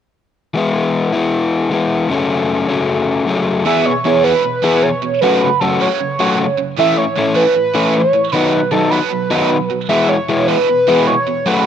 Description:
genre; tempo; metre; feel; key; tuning
rock; 154 BPM; 4/4; straight; E major; A4 = 440 Hz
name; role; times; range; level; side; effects
crunchy overdriven guitar; riff; 0.5-11.7 s; F#2 to G#4; -15 LUFS; left 4 dB; none
overdriven synth lead; melody; 3.7-11.7 s; A4 to E5; -15 LUFS; right 2 dB; distortion, chorus, phaser
biting overdriven guitar; riff; 3.7-11.6 s; E2 to B3; -22 LUFS; right 11 dB; wide subtle chorus, analog delay
room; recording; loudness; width
light reverb, digital ambience; rough home demo mix; -13 LUFS; side -8 dB against mid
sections
0.5-3.7 A section; 3.7-11.7 B section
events
none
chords
0.5 E; 2.1 F#m; 3.7 E; 5.2 F#m; 6.8 A; 8.3 B; 9.9 E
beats
| 0.55 0.94 1.32 1.71 | 2.10 2.49 2.88 3.27 | 3.66 4.04 4.43 4.82 | 5.21 5.60 5.99 6.38 | 6.77 7.16 7.55 7.94 | 8.33 8.72 9.12 9.51 | 9.90 10.29 10.68 11.07 | 11.46

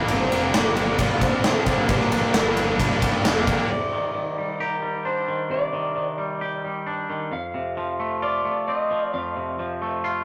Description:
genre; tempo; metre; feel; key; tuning
quiet-loud alternative rock; 132 BPM; 4/4; straight; C dorian; A4 = 439 Hz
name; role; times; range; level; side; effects
cranked stack guitar; riff; 0.0-3.7 s; G2 to D4; -28 LUFS; equal; overdrive
tight distorted guitar; riff; 0.0-3.7 s; G2 to D4; -29 LUFS; equal; distortion
electric guitar through a small old amp; melody; 0.1-10.2 s; Bb3 to F5; -30 LUFS; equal; spring reverb, tape echo
fuzz picked electric bass; bass; 0.1-3.6 s; F1 to G2; -32 LUFS; equal; overdrive
big rock drum kit; drums; 0.1-3.6 s; kick drum, ride cymbal, snare drum; -26 LUFS; equal; none
twangy electric guitar; arpeggios; 3.7-10.2 s; F2 to G4; -29 LUFS; equal; none
room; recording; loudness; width
moderate studio ambience, RT60 0.5 s; rough rehearsal-room recording, warm saturation; -24 LUFS; mono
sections
0.0-3.7 A section; 3.7-10.2 B section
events
none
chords
0.0 Gm; 3.7 Cmadd9; 7.3 F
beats
| 0.09 0.54 0.99 1.44 | 1.89 2.34 2.79 3.24 | 3.69 4.15 4.60 5.05 | 5.51 5.96 6.41 6.87 | 7.32 7.78 8.23 8.69 | 9.14 9.60 10.05

